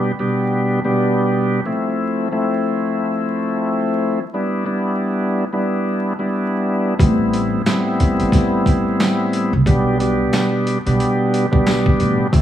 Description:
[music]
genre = hip hop, boom-bap hip-hop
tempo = 90 BPM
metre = 4/4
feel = swing 59% on 16ths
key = unclear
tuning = A4 = 440 Hz
[part]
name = bright tonewheel organ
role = accompaniment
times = 0.0-12.4 s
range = A2 to G4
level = -17 LUFS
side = equal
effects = overdrive, slow rotary speaker, high-pass filter, low-pass filter
[part]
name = upright bass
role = bass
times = 7.0-12.4 s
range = A1 to D2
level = -18 LUFS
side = equal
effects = none
[part]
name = boom bap sampler-style drum kit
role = drums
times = 7.0-12.4 s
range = handclaps, hi-hat, kick drum, snare drum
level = -18 LUFS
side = equal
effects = none
[part]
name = tambourine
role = percussion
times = 7.7-11.8 s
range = none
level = -39 LUFS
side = right 7 dB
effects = none
[sound]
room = moderate echo chamber reverb, RT60 1.6 s, studio reverb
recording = vinyl crackle, small room ambience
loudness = -16 LUFS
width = side -11 dB against mid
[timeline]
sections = 0.0-12.4 A section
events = none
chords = 0.0 G/B; 1.7 Fmaj7; 4.3 G6; 7.0 Am7; 9.7 G/B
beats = 0.33 1.00 | 1.66 2.33 3.00 3.66 | 4.33 5.00 5.66 6.33 | 7.00 7.66 8.33 9.00 | 9.66 10.33 11.00 11.66 | 12.33

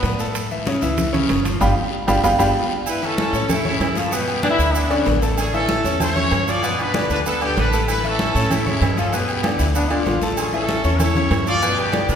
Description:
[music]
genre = latin, salsa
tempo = 192 BPM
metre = 4/4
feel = straight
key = A major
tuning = A4 = 440 Hz
[part]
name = felt-muted upright piano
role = melody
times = 0.0-2.5 s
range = F5 to B5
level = -21 LUFS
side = right 2 dB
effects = none
[part]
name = clear grand piano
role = accompaniment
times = 0.0-12.2 s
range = B2 to C#6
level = -22 LUFS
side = left 2 dB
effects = none
[part]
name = upright bass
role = bass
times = 0.0-12.2 s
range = G1 to B2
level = -24 LUFS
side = equal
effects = none
[part]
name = congas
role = percussion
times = 0.0-12.2 s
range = none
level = -26 LUFS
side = equal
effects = none
[part]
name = guiro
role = percussion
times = 0.0-12.2 s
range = none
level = -33 LUFS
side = left 5 dB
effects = none
[part]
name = maracas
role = percussion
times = 0.0-12.2 s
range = none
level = -34 LUFS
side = right 4 dB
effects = none
[part]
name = timbales and agogo bells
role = percussion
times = 0.0-12.1 s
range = none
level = -28 LUFS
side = right 5 dB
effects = none
[part]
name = warm horn section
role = melody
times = 2.9-12.2 s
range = G#3 to D5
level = -23 LUFS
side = right 1 dB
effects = none
[part]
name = clear trombone section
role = second line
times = 4.4-5.3, 9.6-10.3 s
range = B3 to F4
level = -24 LUFS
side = left 1 dB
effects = none
[sound]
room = wet scoring stage reverb, RT60 2.0 s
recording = recorded in a church or concert hall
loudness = -17 LUFS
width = side -8 dB against mid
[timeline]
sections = 0.0-2.9 A section; 2.9-12.2 B section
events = band accent 1.6-2.9; drum fill 2.2-2.9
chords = 0.3 A; 1.6 G7; 2.9 A; 4.1 G; 5.4 A; 6.6 G; 7.9 A; 9.1 G; 10.4 A; 11.6 G7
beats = 0.03 | 0.35 0.67 0.98 1.29 | 1.61 1.93 2.24 2.55 | 2.87 3.18 3.50 3.81 | 4.12 4.44 4.75 5.07 | 5.38 5.69 6.00 6.32 | 6.63 6.94 7.25 7.57 | 7.88 8.19 8.50 8.82 | 9.13 9.44 9.75 10.06 | 10.37 10.69 11.00 11.31 | 11.62 11.93

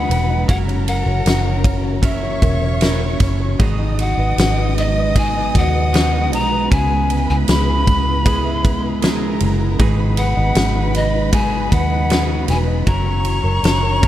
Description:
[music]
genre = pop ballad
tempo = 78 BPM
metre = 4/4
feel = straight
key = G# minor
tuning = A4 = 440 Hz
[part]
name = breathy mellow pan flute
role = melody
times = 0.0-14.1 s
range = D#5 to B5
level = -22 LUFS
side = left 1 dB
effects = none
[part]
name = warm studio violin section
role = second line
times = 0.0-14.1 s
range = A#4 to D#6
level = -28 LUFS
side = right 1 dB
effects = none
[part]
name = felt-muted upright piano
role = accompaniment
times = 0.0-14.1 s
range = C#3 to E5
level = -26 LUFS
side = left 4 dB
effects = none
[part]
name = glassy FM pad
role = sustained chords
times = 0.0-14.1 s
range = C#3 to F#4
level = -27 LUFS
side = right 2 dB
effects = ensemble chorus, built-in reverb
[part]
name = twelve-string electric guitar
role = arpeggios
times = 0.0-14.1 s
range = G#2 to A#4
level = -29 LUFS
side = right 7 dB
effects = none
[part]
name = vintage muted fingered electric bass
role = bass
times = 0.0-14.1 s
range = E1 to D#2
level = -19 LUFS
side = equal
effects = none
[part]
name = huge arena drum kit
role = drums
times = 0.1-14.1 s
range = kick drum, ride cymbal, snare drum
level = -19 LUFS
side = equal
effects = none
[sound]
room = small room reverb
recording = dark, warm production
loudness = -14 LUFS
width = side -13 dB against mid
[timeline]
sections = 0.0-14.1 A section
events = none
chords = 0.5 F#7; 3.6 G#m7; 6.7 C#m7; 9.8 G#m7; 12.9 F#7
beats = | 0.48 1.25 2.03 2.81 | 3.60 4.38 5.16 5.94 | 6.71 7.49 8.26 9.02 | 9.79 10.56 11.33 12.10 | 12.87 13.64

